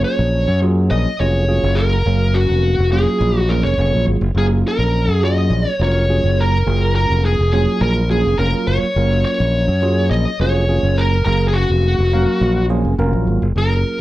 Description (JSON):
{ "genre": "electric jazz fusion", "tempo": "104 BPM", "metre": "4/4", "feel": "straight", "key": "F# major", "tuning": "A4 = 440 Hz", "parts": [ { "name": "smooth overdriven lead guitar", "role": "melody", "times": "0.0-14.0 s", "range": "F#4 to D#5", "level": "-20 LUFS", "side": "equal", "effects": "slapback echo" }, { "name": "bell-like tine electric piano", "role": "accompaniment", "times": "0.0-14.0 s", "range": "F#3 to E#5", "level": "-21 LUFS", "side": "right 2 dB", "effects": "phaser" }, { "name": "modern bright fingered electric bass", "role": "bass", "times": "0.0-13.8 s", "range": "E#1 to F#2", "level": "-16 LUFS", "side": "equal", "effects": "none" } ], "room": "little or no reverb", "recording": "dry, close 1970s-style studio recording", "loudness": "-14 LUFS", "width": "side -16 dB against mid", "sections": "0.0-13.6 A section", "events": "none", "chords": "0.0 F#maj9" }